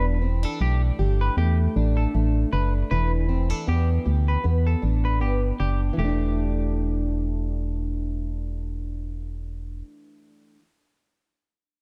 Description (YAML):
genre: indie pop, bedroom pop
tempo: 78 BPM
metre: 4/4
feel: swing 55% on 16ths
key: E minor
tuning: A4 = 440 Hz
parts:
  - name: semi-hollow electric guitar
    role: second line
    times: 0.0-8.3 s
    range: G4 to B4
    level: -34 LUFS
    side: equal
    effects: subtle chorus, tape echo
  - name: fingerpicked plugged-in steel-string acoustic guitar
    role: accompaniment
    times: 0.0-10.6 s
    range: E3 to G4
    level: -32 LUFS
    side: equal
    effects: analog chorus, vibrato effect
  - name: organ-like FM bass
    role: bass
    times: 0.0-9.8 s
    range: E1 to E2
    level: -25 LUFS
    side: equal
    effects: none
room: light reverb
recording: dark, warm production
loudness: -24 LUFS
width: mono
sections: 0.0-6.0 A section; 6.0-9.1 B section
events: none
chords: 0.0 Em11; 6.0 Em7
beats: 0.60 1.37 2.14 | 2.91 3.68 4.45 5.22 | 5.99 6.76 7.53 8.30